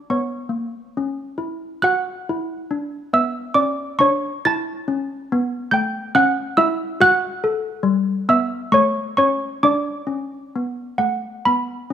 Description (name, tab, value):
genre	classical, tune for handbells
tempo	69 BPM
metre	3/4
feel	uneven beats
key	D major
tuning	A4 = 438 Hz
part	malleted handbells	solo	0.0-11.9 s	G3 to A6	-18 LUFS	equal	none
room	light reverb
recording	close, detailed microphones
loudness	-18 LUFS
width	side -9 dB against mid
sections	0.0-11.9 A section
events	none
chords	0.0 F# (rootless); 1.8 D; 4.4 A7; 7.0 F#m; 7.9 Em/G; 8.7 A; 9.6 D5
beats	0.07 0.95 | 1.83 2.70 3.56 | 4.44 5.30 6.14 | 6.99 7.85 8.73 | 9.62 10.53 11.45